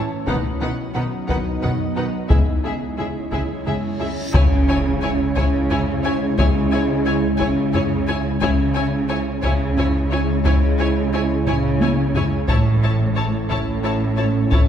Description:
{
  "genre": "cinematic, hybrid orchestral and electronic film score",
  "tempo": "59 BPM (dotted quarters)",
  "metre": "6/8",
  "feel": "straight",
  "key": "C# minor",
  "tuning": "A4 = 440 Hz",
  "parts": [
    { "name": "dark French horn section", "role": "sustained chords", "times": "0.0-14.7 s", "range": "E3 to E4", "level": "-28 LUFS", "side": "right 1 dB", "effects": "none" },
    { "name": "ethereal airy pad", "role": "sustained chords", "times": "0.0-14.7 s", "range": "F#3 to D#5", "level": "-26 LUFS", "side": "right 1 dB", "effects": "ensemble chorus, built-in reverb" },
    { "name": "warm symphonic violin section", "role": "second line", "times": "0.3-14.6 s", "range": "G#4 to F#5", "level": "-30 LUFS", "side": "left 3 dB", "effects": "none" },
    { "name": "rich symphonic viola section", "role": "accompaniment", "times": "0.3-14.6 s", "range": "D#3 to E4", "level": "-30 LUFS", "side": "equal", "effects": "none" },
    { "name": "dark symphonic double bass section", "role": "bass", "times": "0.3-14.7 s", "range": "A1 to C#2", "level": "-24 LUFS", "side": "right 1 dB", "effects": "none" },
    { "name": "warm symphonic cello section", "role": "bass", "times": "0.3-14.7 s", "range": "A2 to C#3", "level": "-24 LUFS", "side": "right 2 dB", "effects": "none" },
    { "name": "taiko ensemble", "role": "drums", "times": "0.3-14.7 s", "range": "none", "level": "-21 LUFS", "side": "left 1 dB", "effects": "none" },
    { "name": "reverse cymbal and impact", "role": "sound effects", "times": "4.1-6.4 s", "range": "none", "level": "-27 LUFS", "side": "left 1 dB", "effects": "none" },
    { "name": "warm symphonic violin section", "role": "melody", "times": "4.3-14.6 s", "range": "G#5 to A5", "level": "-30 LUFS", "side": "left 5 dB", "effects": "none" }
  ],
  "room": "wet concert hall reverb, RT60 1.9 s",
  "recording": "recorded in a church or concert hall",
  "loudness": "-17 LUFS",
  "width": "side -9 dB against mid",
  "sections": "0.0-4.3 A section; 4.3-14.7 B section",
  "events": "reverse cymbal 4.1; impact 4.3-6.4; drum fill 11.5-12.5",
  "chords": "0.3 B; 2.3 C#m; 12.5 A"
}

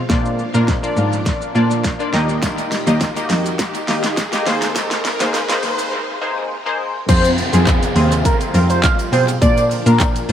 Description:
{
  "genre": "dance-pop",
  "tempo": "103 BPM",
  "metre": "4/4",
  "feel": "straight",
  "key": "F dorian",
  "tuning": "A4 = 439 Hz",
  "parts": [
    { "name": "string machine, violins", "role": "sustained chords", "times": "0.0-10.3 s", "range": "Ab2 to G4", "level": "-28 LUFS", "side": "right 1 dB", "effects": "ensemble chorus, sidechain pumping" },
    { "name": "riser and downlifter", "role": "sound effects", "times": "0.5-10.3 s", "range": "none", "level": "-26 LUFS", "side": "equal", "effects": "none" },
    { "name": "funky polysynth comp", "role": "accompaniment", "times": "0.1-10.3 s", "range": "Bb3 to Eb5", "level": "-22 LUFS", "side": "left 2 dB", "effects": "chorus, sidechain pumping, analog delay" },
    { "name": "warm cello", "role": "bass", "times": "0.1-10.3 s", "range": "Eb2 to B2", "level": "-18 LUFS", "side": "equal", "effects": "sidechain pumping" },
    { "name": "pop drum kit", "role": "drums", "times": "0.1-10.3 s", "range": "crash cymbal, handclaps, hi-hat, kick drum, shaker, snare drum", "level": "-20 LUFS", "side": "equal", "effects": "analog delay" },
    { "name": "tube shaker", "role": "percussion", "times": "2.4-10.3 s", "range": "none", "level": "-36 LUFS", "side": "right 5 dB", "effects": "none" },
    { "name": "octave-doubled lead", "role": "melody", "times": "7.1-10.3 s", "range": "Ab4 to F5", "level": "-19 LUFS", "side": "equal", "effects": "chorus, phaser, analog delay" }
  ],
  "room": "light reverb",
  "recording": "echo-heavy mix, high-pass filter",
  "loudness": "-15 LUFS",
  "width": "side -9 dB against mid",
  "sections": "0.0-7.1 A section; 7.1-10.3 B section",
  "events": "build-up 0.0-7.1; drum fill 0.0-5.9; filter sweep 0.0-7.1; riser 0.5-7.1; break 5.9-7.1; drop 7.1-10.3",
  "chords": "0.1 Bb; 2.1 Eb; 4.5 Abadd9/Eb; 7.1 Fm; 9.4 Bb"
}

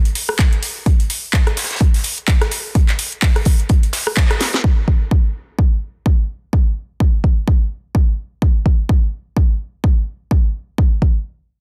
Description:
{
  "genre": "house",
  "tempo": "127 BPM",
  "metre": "4/4",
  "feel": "swing 57% on 16ths",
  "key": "none",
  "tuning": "none",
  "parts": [
    { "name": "house drum kit", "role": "drums", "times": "0.1-4.6 s", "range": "handclaps, hi-hat, rim click, snare drum", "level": "-23 LUFS", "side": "equal", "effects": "low-pass filter on hats, studio reverb, low-pass filter on snare" },
    { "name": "loose indie drum kit", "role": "drums", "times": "0.1-4.6 s", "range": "hi-hat, snare drum", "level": "-32 LUFS", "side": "equal", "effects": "sidechain pumping on hats, high-pass filter on hats, studio reverb, high-pass filter on snare, high-pass filter on room" },
    { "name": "electronic kick drum", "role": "drums", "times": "0.4-11.1 s", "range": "none", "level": "-16 LUFS", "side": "equal", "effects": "overdrive, studio reverb" }
  ],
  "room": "studio reverb",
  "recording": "dense, heavily limited modern master",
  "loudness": "-17 LUFS",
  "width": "mono",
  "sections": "0.0-4.6 A section; 4.6-11.6 B section",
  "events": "band accent 4.2; drum fill 4.4; stop 11.3-11.6",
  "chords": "none"
}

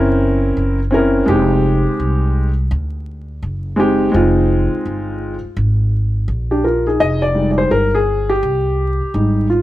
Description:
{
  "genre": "hip hop, jazz-hop",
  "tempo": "84 BPM",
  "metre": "4/4",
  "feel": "swing 64% on 16ths",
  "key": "F dorian",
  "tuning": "A4 = 440 Hz",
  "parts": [
    { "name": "dark concert grand piano", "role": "accompaniment", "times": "0.0-9.6 s", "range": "G3 to Eb5", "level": "-15 LUFS", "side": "equal", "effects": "none" },
    { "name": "upright bass", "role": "bass", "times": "0.0-9.6 s", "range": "F1 to D2", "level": "-18 LUFS", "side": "equal", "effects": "none" }
  ],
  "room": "light reverb",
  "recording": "vinyl crackle",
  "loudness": "-14 LUFS",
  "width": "side -15 dB against mid",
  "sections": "0.0-7.0 A section; 7.0-9.6 B section",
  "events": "grand piano solo 7.0-9.6",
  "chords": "0.0 Gb7#11; 1.3 Fm9"
}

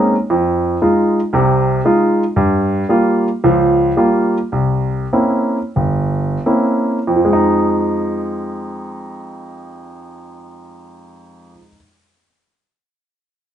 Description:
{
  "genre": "solo jazz",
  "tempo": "78-116 BPM",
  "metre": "4/4",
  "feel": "swing 68% on 8ths, rubato",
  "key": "F minor",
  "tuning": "A4 = 437 Hz",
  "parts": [
    { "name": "warm baby grand piano", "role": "solo", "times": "0.0-11.8 s", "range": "G1 to F4", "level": "-14 LUFS", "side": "equal", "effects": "none" }
  ],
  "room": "moderate studio reverb, RT60 0.5 s",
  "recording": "nothing above 10.5 kHz",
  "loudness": "-13 LUFS",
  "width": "side -10 dB against mid",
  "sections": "0.0-7.2 A section; 7.2-13.2 B section",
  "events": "slowing down 2.4-7.2",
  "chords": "0.3 Fm7; 2.4 Gm7b5; 4.5 C7b9; 7.2 Fm7"
}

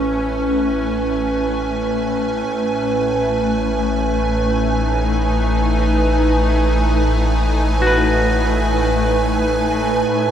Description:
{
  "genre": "ambient",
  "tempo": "free time",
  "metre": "none",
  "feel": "none",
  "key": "unclear",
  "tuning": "A4 = 440 Hz",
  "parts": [
    { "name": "evolving wavetable pad", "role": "sustained chords", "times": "0.0-10.3 s", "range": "A2 to G#5", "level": "-17 LUFS", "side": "equal", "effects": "ensemble chorus, built-in reverb, shimmer reverb" },
    { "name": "warm sub bass", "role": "bass", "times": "0.0-10.0 s", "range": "A1", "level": "-21 LUFS", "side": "equal", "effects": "none" },
    { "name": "semi-hollow electric guitar", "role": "arpeggios", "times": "7.8-10.0 s", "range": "F#4 to B4", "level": "-22 LUFS", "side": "left 1 dB", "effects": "diffuse ambient delay, shimmer reverb" }
  ],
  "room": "wet cathedral reverb, RT60 4.9 s",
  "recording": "dark, warm production",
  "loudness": "-15 LUFS",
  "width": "side -9 dB against mid",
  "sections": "0.0-10.1 A section",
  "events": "fade-in on clean electric guitar 0.0-10.1; fade-in on sub bass 0.0-10.1",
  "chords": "0.0 Amaj7; 2.5 G#m/A"
}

